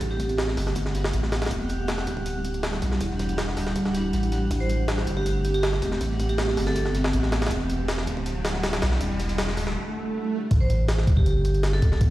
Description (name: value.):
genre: drum and bass, jungle.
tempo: 160 BPM.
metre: 4/4.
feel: straight.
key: A dorian.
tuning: A4 = 437 Hz.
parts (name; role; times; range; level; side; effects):
granular cloud pad; sustained chords; 0.0-12.1 s; G3 to F#5; -30 LUFS; equal; built-in reverb.
soft dub sub bass; bass; 0.0-12.1 s; D1 to B1; -26 LUFS; equal; none.
crunchy breakbeat drum kit; drums; 0.0-9.7 s; hi-hat, snare drum; -44 LUFS; left 1 dB; none.
jungle sampler-style drum kit; drums; 0.0-12.1 s; hi-hat, kick drum, snare drum; -27 LUFS; equal; high-pass filter on kick, high-pass filter on hats, high-pass filter on snare, high-pass filter on room.
backwards swelling texture; texture; 0.0-9.8 s; G4 to F#5; -38 LUFS; right 1 dB; built-in reverb.
vibraphone with hard mallets; melody; 0.1-0.4, 4.6-6.9, 10.6-11.9 s; G4 to C5; -30 LUFS; right 2 dB; dub echo.
riser and swell; sound effects; 7.1-10.5 s; none; -33 LUFS; right 2 dB; none.
room: moderate echo chamber reverb, RT60 1.5 s, small room ambience.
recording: played on a big sound system in a bare room, stone room reverb, vinyl crackle.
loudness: -22 LUFS.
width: side -16 dB against mid.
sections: 0.0-10.5 A section; 10.5-12.1 B section.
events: build-up 0.0-10.5; riser 7.1-9.8; break 9.8-10.5; swell 9.8-10.5; drop 10.5-12.1.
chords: 0.0 Am9; 1.5 Em9; 4.5 Am9; 7.5 Em9; 10.5 Am9.